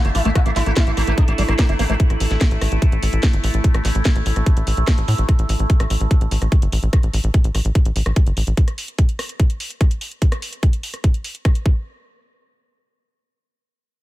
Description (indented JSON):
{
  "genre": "psychedelic trance",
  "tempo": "146 BPM",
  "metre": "4/4",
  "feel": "straight",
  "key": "unclear",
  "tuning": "A4 = 440 Hz",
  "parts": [
    { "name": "sitar", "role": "melody", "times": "0.0-1.9 s", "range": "A3 to F4", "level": "-27 LUFS", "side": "equal", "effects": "phaser, sidechain pumping, dub echo" },
    { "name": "overtone-sweeping drone", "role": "sustained chords", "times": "0.0-5.3 s", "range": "A3 to E4", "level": "-27 LUFS", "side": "right 2 dB", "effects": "chorus, built-in reverb, sidechain pumping" },
    { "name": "liquid acid bass", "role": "riff", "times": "0.0-1.9 s", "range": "G3 to Bb3", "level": "-28 LUFS", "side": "equal", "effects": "phaser, auto-pan, sidechain pumping, dub echo" },
    { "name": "tight sequencer bass", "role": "bass", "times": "0.0-8.5 s", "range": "G1 to A2", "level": "-19 LUFS", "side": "equal", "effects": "none" },
    { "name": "garage drum kit", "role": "drums", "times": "0.0-11.6 s", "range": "hi-hat, rim click, snare drum", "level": "-27 LUFS", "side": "equal", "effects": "none" },
    { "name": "electronic kick drum", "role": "drums", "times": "0.4-11.7 s", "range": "none", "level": "-16 LUFS", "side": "equal", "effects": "none" }
  ],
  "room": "little or no reverb",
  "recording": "none",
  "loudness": "-16 LUFS",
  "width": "side -16 dB against mid",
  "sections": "0.0-11.9 A section; 11.9-14.0 B section",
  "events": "filter sweep on acid bass 0.0-2.0",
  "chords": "0.0 A5; 11.7 N.C."
}